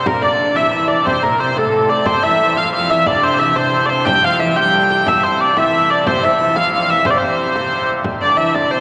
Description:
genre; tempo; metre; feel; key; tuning
medieval dance; 120 BPM (dotted quarters); 6/8; straight; C major; A4 = 438 Hz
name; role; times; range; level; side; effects
rich hurdy-gurdy; melody; 0.0-8.8 s; A4 to G5; -16 LUFS; equal; none
hammered dulcimer; second line; 0.0-8.8 s; A3 to A4; -27 LUFS; equal; none
rich viola da gamba; second line; 0.0-8.8 s; A2 to G3; -26 LUFS; equal; none
pipe organ, trumpet; drone; 0.0-8.8 s; C3; -30 LUFS; equal; none
frame drum; percussion; 0.1-8.8 s; none; -29 LUFS; equal; none
room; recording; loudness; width
wet cathedral reverb, RT60 5.8 s; none; -15 LUFS; mono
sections
0.1-8.0 A section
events
none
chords
none

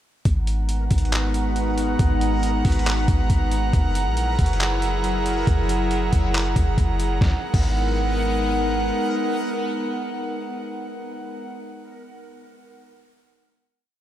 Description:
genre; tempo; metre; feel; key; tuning
hip hop, atmospheric cloud-rap; 138 BPM; 4/4; half-time; G# minor; A4 = 443 Hz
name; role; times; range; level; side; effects
backwards swelling texture; texture; 0.8-11.4 s; F#3 to F#5; -34 LUFS; left 1 dB; built-in reverb
airy breathy pad; sustained chords; 0.5-11.5 s; F#3 to A#5; -25 LUFS; equal; chorus, sidechain pumping
clean 808-style bass; bass; 0.3-8.9 s; F#1 to A#1; -23 LUFS; equal; none
trip hop sampler-style drum kit; drums; 0.3-7.7 s; crash cymbal, handclaps, hi-hat, kick drum, snare drum; -22 LUFS; equal; none
room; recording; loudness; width
little or no reverb; none; -19 LUFS; side -12 dB against mid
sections
0.3-7.2 verse; 7.2-10.7 final chord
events
none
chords
0.3 G#m9; 3.7 F#7; 7.2 G#m9

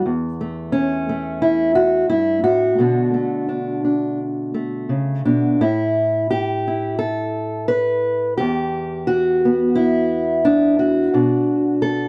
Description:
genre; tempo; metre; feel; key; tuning
folk, solo fingerstyle acoustic guitar; 87 BPM; 4/4; rubato; unclear; A4 = 436 Hz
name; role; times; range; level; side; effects
fingerpicked steel-string acoustic guitar; solo; 0.0-12.1 s; E2 to B4; -19 LUFS; equal; none
room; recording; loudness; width
light reverb; dry, close 1970s-style studio recording; -19 LUFS; mono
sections
0.0-5.6 A section; 5.6-12.1 B section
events
none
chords
0.1 A/E; 2.8 Bm7; 5.6 Asus2; 8.4 Em; 11.1 Bm

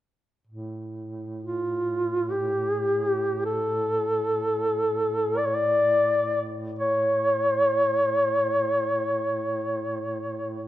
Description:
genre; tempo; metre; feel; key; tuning
caucasian folk, Caucasian lament; free time; none; none; unclear; A4 = 440 Hz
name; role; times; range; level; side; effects
mellow duduk; drone; 0.5-10.7 s; A2; -34 LUFS; right 2 dB; none
dark duduk; melody; 1.4-10.7 s; F4 to D5; -23 LUFS; equal; none
room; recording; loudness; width
moderate recital hall reverb, RT60 1.6 s; minimal, uncompressed stereo recording; -22 LUFS; side -13 dB against mid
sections
0.5-10.7 A section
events
none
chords
none

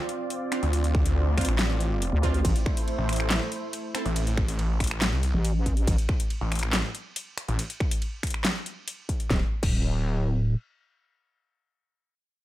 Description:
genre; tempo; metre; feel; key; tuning
heavy wobble dubstep; 140 BPM; 4/4; half-time; unclear; A4 = 441 Hz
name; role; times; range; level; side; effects
supersaw pad; sustained chords; 0.0-4.1 s; A3 to D5; -33 LUFS; right 2 dB; sidechain pumping, low-pass filter
dubstep drum kit; drums; 0.1-9.8 s; crash cymbal, finger snaps, handclaps, hi-hat, ride cymbal, snare drum; -31 LUFS; equal; none
orchestra-hit-like synth stab; stabs; 0.5-4.0 s; C4 to A4; -34 LUFS; right 3 dB; built-in reverb, dub echo
snarling distorted saw bass; bass; 0.6-7.6 s; A1 to D2; -26 LUFS; equal; distortion, overdrive
electronic kick drum; drums; 0.9-9.8 s; none; -27 LUFS; equal; distortion
wobble bass; bass; 1.4-2.5, 5.3-6.0, 9.3-10.5 s; D1 to D2; -24 LUFS; equal; chorus, overdrive
room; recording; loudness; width
little or no reverb; none; -24 LUFS; side -15 dB against mid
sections
0.0-9.3 A section; 9.3-12.4 B section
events
drop 0.0-9.3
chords
0.0 Dm7; 2.4 Am; 9.3 N.C.

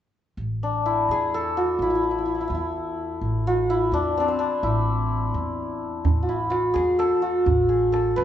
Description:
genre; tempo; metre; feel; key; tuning
Persian modal ensemble; 85 BPM (dotted quarters); 6/8; straight; A avaz esfahan; A4 = 440 Hz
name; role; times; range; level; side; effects
upright bass; bass; 0.4-8.2 s; A1 to E2; -28 LUFS; equal; none
santur; melody; 0.6-8.2 s; C4 to B4; -22 LUFS; left 1 dB; none
tombak; percussion; 6.0-8.2 s; none; -24 LUFS; right 2 dB; none
room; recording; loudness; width
moderate large studio reverb, RT60 1.1 s; band playing live in one room, nothing above 8.0 kHz; -21 LUFS; side -10 dB against mid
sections
0.4-8.2 A section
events
none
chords
none

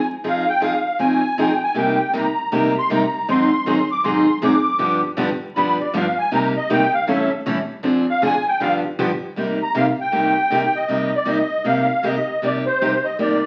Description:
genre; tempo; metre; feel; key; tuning
jazz; 158 BPM; 4/4; swing 61% on 8ths; C minor; A4 = 440 Hz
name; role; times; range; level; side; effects
musette accordion; melody; 0.0-13.5 s; C5 to D6; -22 LUFS; equal; none
picked steel-string acoustic guitar; accompaniment; 0.2-13.4 s; G2 to A4; -22 LUFS; equal; none
room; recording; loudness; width
wet large studio reverb, RT60 0.8 s; very old 78 rpm record, vinyl crackle; -19 LUFS; mono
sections
0.0-9.4 A section; 9.4-13.5 B section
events
accordion solo 0.0-9.4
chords
0.0 Fm7; 1.8 Cm7; 3.3 Ab7; 4.8 G7; 6.3 Cm7; 7.1 A7; 7.8 Dm7b5; 8.6 G7; 9.4 Cm7

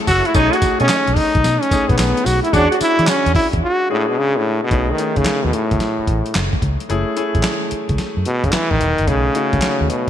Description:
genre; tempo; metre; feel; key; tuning
R&B, new jack swing; 110 BPM; 4/4; swing 66% on 16ths; unclear; A4 = 441 Hz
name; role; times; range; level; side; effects
clear baby grand piano; accompaniment; 0.0-10.1 s; G#3 to G#4; -23 LUFS; left 4 dB; none
brilliant trombone; melody; 0.1-10.1 s; A2 to F#4; -17 LUFS; equal; none
tonewheel organ; stabs; 0.1-3.1 s; G#3 to G#4; -22 LUFS; right 2 dB; chorus vibrato, slow rotary speaker
vintage muted fingered electric bass; bass; 0.1-9.9 s; E1 to E3; -20 LUFS; equal; none
dusty soul sampler-style drum kit; drums; 0.1-10.1 s; handclaps, hi-hat, kick drum, snare drum, tambourine; -20 LUFS; equal; gated reverb
room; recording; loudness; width
moderate lush hall reverb, RT60 1.8 s; bright 1980s-style digital production; -14 LUFS; side -10 dB against mid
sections
0.0-4.7 A section; 4.7-10.1 B section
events
break 3.6-4.7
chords
0.3 B13; 2.5 E13; 4.7 B13 (rootless); 6.9 F#m7; 9.1 B13

